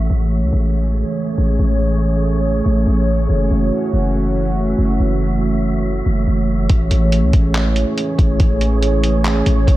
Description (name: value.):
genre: hip hop, atmospheric cloud-rap.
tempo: 141 BPM.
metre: 4/4.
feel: half-time.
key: unclear.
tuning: A4 = 440 Hz.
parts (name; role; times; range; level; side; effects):
dark analog pad; sustained chords; 0.0-9.8 s; E3 to C#5; -19 LUFS; right 1 dB; chorus, sidechain pumping, low-pass filter.
warm 808-style bass; bass; 0.0-9.8 s; F#1 to C#2; -16 LUFS; equal; none.
wind-like tuned noise texture; texture; 0.0-9.8 s; A3 to E5; -26 LUFS; right 3 dB; built-in reverb.
lo-fi sampler-style drum kit; drums; 6.7-9.8 s; handclaps, hi-hat, kick drum; -18 LUFS; equal; none.
room: little or no reverb.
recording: none.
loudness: -14 LUFS.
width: side -16 dB against mid.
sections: 0.0-6.7 A section; 6.7-9.8 B section.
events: filter sweep on analog synth pad 0.0-6.7.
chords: 0.0 Amaj7; 3.3 F#m7; 6.7 Amaj7.